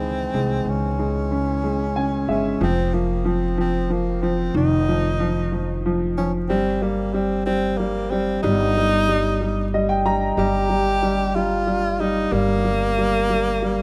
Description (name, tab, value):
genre	six-eight pop ballad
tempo	62 BPM (dotted quarters)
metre	6/8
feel	straight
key	unclear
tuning	A4 = 440 Hz
part	clear tenor saxophone	melody	0.0-13.8 s	Bb3 to G4	-27 LUFS	equal	analog delay
part	clear upright piano	accompaniment	0.0-13.8 s	Db3 to Bb5	-24 LUFS	equal	none
part	upright bass	bass	0.0-13.8 s	F1 to Db2	-28 LUFS	equal	none
room	little or no reverb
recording	rough home demo mix, vinyl crackle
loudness	-21 LUFS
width	mono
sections	0.0-2.6 A section; 2.6-13.8 B section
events	upright piano fill 1.6-2.6, 9.4-10.4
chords	0.0 Dbmadd9; 2.6 F7(no3); 6.5 Eb/G